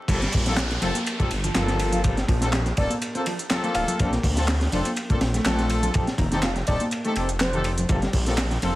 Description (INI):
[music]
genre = breakbeat, breaks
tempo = 123 BPM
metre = 4/4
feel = swing 54% on 16ths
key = G minor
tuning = A4 = 440 Hz
[part]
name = mellow electric guitar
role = riff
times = 0.1-8.7 s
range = Eb3 to A4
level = -31 LUFS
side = equal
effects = tape echo
[part]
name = clear brass ensemble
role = stabs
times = 0.1-8.8 s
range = Bb3 to A4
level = -29 LUFS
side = left 2 dB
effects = vintage 12-bit sampler grit, tape echo
[part]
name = detuned saw bass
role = bass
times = 0.1-8.7 s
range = D1 to D2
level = -26 LUFS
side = equal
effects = tube saturation
[part]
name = crunchy breakbeat drum kit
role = drums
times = 0.1-8.8 s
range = crash cymbal, hi-hat, kick drum, ride cymbal, snare drum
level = -26 LUFS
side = equal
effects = none
[part]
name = garage drum kit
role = drums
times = 0.1-8.7 s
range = handclaps, hi-hat, ride cymbal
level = -32 LUFS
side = right 1 dB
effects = none
[part]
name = downlifter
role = sound effects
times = 0.1-4.0 s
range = none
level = -35 LUFS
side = equal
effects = none
[part]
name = congas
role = percussion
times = 0.8-8.7 s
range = none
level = -32 LUFS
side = equal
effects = none
[part]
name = soft struck synth lead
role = melody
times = 2.8-7.9 s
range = C5 to F5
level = -32 LUFS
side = equal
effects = chorus, AM radio sound, tape echo
[sound]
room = studio reverb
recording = vinyl crackle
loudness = -21 LUFS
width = side -17 dB against mid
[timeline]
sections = 0.1-8.8 A section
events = drop 0.1-8.8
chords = 0.1 Gm11; 4.0 Bbmaj7; 5.9 F7; 7.9 Gm11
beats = | 0.09 0.58 1.07 1.55 | 2.04 2.53 3.02 3.50 | 3.99 4.48 4.97 5.46 | 5.94 6.43 6.92 7.41 | 7.89 8.38